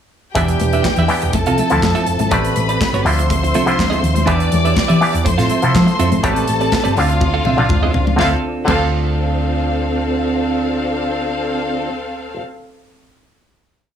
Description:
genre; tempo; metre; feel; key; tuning
disco; 122 BPM; 4/4; straight; D dorian; A4 = 441 Hz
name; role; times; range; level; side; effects
clear studio string section; second line; 0.3-12.4 s; C4 to D6; -21 LUFS; left 3 dB; none
muted clav; accompaniment; 0.3-12.4 s; D3 to D5; -21 LUFS; left 2 dB; overdrive, auto-wah
semi-hollow electric guitar; accompaniment; 0.4-12.4 s; C4 to F5; -24 LUFS; right 8 dB; none
tonewheel organ; sustained chords; 0.4-11.9 s; D3 to E5; -23 LUFS; right 3 dB; chorus vibrato, slow rotary speaker
hollow-body short-scale fingered electric bass; bass; 0.4-12.4 s; E1 to F3; -19 LUFS; equal; none
modern studio drum kit; drums; 0.4-8.8 s; crash cymbal, handclaps, hi-hat, kick drum, snare drum, toms; -22 LUFS; equal; none
congas; percussion; 0.4-8.8 s; none; -24 LUFS; left 6 dB; none
room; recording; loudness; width
light reverb, small room reverb; small room ambience; -14 LUFS; side -8 dB against mid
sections
0.4-8.2 verse; 8.2-12.1 final chord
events
drum fill 7.2-8.2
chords
0.4 Em7; 1.3 Dm9/F (rootless); 2.3 Am11; 3.1 Dm9; 4.3 Em7; 5.3 Fmaj7; 6.2 Am11; 7.0 Dm9

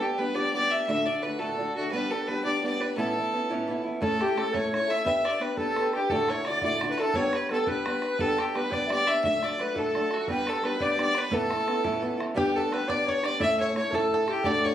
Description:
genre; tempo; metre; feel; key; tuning
celtic folk, Celtic jig; 115 BPM (dotted quarters); 6/8; straight; unclear; A4 = 440 Hz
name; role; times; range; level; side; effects
clear fiddle; melody; 0.0-14.7 s; F#4 to E5; -27 LUFS; equal; none
fingerpicked old ladder-braced acoustic guitar; accompaniment; 0.0-14.7 s; D2 to B4; -29 LUFS; right 1 dB; none
baroque flute; second line; 4.0-14.7 s; G4 to E5; -30 LUFS; left 2 dB; none
bodhran; percussion; 4.0-14.7 s; none; -38 LUFS; right 1 dB; none
bluegrass banjo; second line; 12.4-14.7 s; G4 to E5; -34 LUFS; right 5 dB; none
room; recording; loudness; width
light reverb; recorded on a phone in the room, studio reverb; -24 LUFS; side -11 dB against mid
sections
0.0-4.0 A section; 4.0-12.4 A section; 12.4-14.7 B section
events
none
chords
0.0 G; 0.9 D; 1.9 G; 3.0 Aadd9; 4.0 A; 5.1 G/B; 6.1 Dadd9; 7.2 G; 9.2 D; 10.3 G; 11.3 Aadd9; 12.4 G; 13.4 A

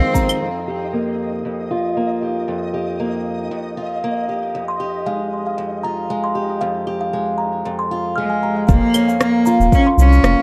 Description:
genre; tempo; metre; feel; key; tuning
folktronica; 116 BPM; 4/4; swing 56% on 16ths; F minor; A4 = 441 Hz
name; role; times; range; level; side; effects
bright cello; melody; 0.0-0.3, 8.2-10.4 s; Ab3 to Db4; -20 LUFS; equal; none
picked acoustic archtop guitar; arpeggios; 0.0-10.4 s; F2 to G4; -24 LUFS; equal; low-pass filter, tape echo
flickering grainy texture; texture; 0.2-8.7 s; Eb5; -36 LUFS; equal; built-in reverb
music box; second line; 0.1-0.3, 4.7-10.4 s; F5 to F6; -27 LUFS; equal; vintage 12-bit sampler grit, tape echo
electronic kick drum; drums; 0.1-0.3, 8.7-9.8 s; none; -17 LUFS; equal; overdrive
electronic shaker, claves and rim click; drums; 0.1-10.4 s; none; -24 LUFS; equal; overdrive, low-pass filter on perc, low-pass filter on snare, low-pass filter on room
round analog bass; bass; 8.7-10.4 s; Eb1 to C2; -15 LUFS; equal; none
room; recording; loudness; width
little or no reverb; dry, close 1970s-style studio recording; -19 LUFS; mono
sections
0.4-8.7 A section; 8.7-10.4 B section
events
band accent 0.0; filter sweep on steel-string acoustic guitar 0.4-8.7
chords
0.4 F9sus4; 4.5 Fmadd9; 8.7 Gdim

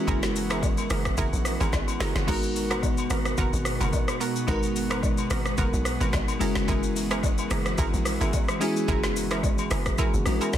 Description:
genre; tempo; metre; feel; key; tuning
amapiano; 109 BPM; 4/4; swing 55% on 16ths; unclear; A4 = 439 Hz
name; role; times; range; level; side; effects
crystalline FM electric piano; accompaniment; 0.0-10.6 s; G#3 to A#4; -30 LUFS; left 2 dB; chorus
airy breathy pad; sustained chords; 0.0-10.6 s; B2 to F#4; -33 LUFS; right 1 dB; chorus, sidechain pumping
analog pluck; stabs; 0.0-10.6 s; B3 to A#4; -33 LUFS; right 5 dB; chorus, digital delay
hollow log drum bass; bass; 0.1-10.6 s; F#1 to B1; -29 LUFS; equal; none
afro-pop drum kit; drums; 0.1-10.6 s; crash cymbal, hi-hat, kick drum, rim click, shaker, snare drum; -28 LUFS; equal; overdrive
agogo bells and woodblock; percussion; 0.1-10.6 s; none; -37 LUFS; left 8 dB; none
room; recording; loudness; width
little or no reverb; dense, heavily limited modern master; -23 LUFS; side -11 dB against mid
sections
0.0-10.6 A section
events
drum fill 1.7-2.3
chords
0.0 F#9; 2.3 G#m9; 6.4 F#9

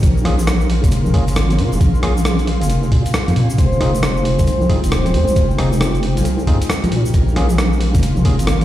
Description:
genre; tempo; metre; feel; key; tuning
UK garage, two-step garage; 135 BPM; 4/4; swing 64% on 16ths; unclear; A4 = 442 Hz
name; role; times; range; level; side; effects
concert harp; melody; 0.0-8.6 s; Bb3 to Db5; -27 LUFS; left 1 dB; digital delay
ethereal airy pad; sustained chords; 0.0-8.6 s; Ab3 to Ab4; -27 LUFS; equal; ensemble chorus, built-in reverb, sidechain pumping
deep soft wobble bass; bass; 0.0-8.6 s; Eb1 to Bb2; -16 LUFS; equal; chorus
boom bap sampler-style drum kit; drums; 0.0-8.6 s; congas, hi-hat, rim click; -22 LUFS; equal; none
electronic kick drum; drums; 0.0-8.4 s; none; -15 LUFS; equal; none
egg shaker; percussion; 0.0-8.6 s; none; -35 LUFS; left 1 dB; none
airy breathy pad; texture; 0.0-8.6 s; F4 to C6; -28 LUFS; equal; chorus, sidechain pumping
overdriven tine electric piano; stabs; 0.2-8.3 s; Bb3 to Ab4; -28 LUFS; left 1 dB; digital delay
room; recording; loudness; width
digital ambience; played on a big sound system in a bare room, large studio reverb; -13 LUFS; side -13 dB against mid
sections
0.0-8.6 A section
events
none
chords
0.0 Bbm7; 3.6 Fm7; 6.9 Bbm7

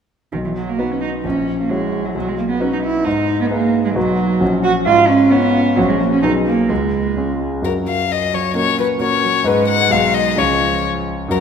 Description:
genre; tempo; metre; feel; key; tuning
quick classical-period movement for piano trio; 132 BPM; 2/4; straight; B major, F# major from 4.0 s; A4 = 438 Hz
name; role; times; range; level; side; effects
warm cello; second line; 0.3-11.4 s; D#3 to F#4; -18 LUFS; right 3 dB; none
clear concert grand piano; accompaniment; 0.3-11.4 s; A#1 to C#5; -19 LUFS; left 1 dB; none
warm violin; melody; 7.6-11.4 s; A#4 to F#5; -16 LUFS; left 8 dB; none
room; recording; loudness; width
wet concert hall reverb, RT60 2.1 s; none; -14 LUFS; side -7 dB against mid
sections
0.3-7.6 A section; 7.6-11.4 B section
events
none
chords
0.3 B; 1.2 F#7/A#; 2.1 B; 3.1 G#m; 4.0 B; 4.4 F#/A#; 4.9 C#7/G#; 5.8 F#/A#; 6.2 G#m/B; 6.7 C#; 7.6 F#; 8.6 F#/A#; 9.5 G#m; 9.9 G#m/B; 10.4 C#

